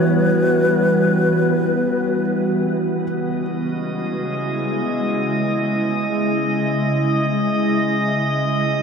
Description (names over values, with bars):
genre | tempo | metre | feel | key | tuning
ambient | free time | none | none | C# minor | A4 = 439 Hz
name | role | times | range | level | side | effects
bright alto flute | melody | 0.0-2.6 s | B4 | -22 LUFS | left 1 dB | ping-pong delay
glassy FM pad | sustained chords | 0.0-8.8 s | C#3 to F#4 | -19 LUFS | equal | ensemble chorus, built-in reverb
felt-muted upright piano | arpeggios | 0.0-3.4 s | C#4 to D#6 | -32 LUFS | left 1 dB | none
drifting glass-harmonics texture | texture | 3.5-8.8 s | D#5 to D#6 | -24 LUFS | equal | chorus, built-in reverb
room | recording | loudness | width
wet huge ambient reverb, RT60 7.6 s | dreamy mix soaked in reverb | -17 LUFS | side -6 dB against mid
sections
0.0-3.0 A section; 3.0-8.8 B section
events
none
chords
0.0 Em; 3.0 C#madd9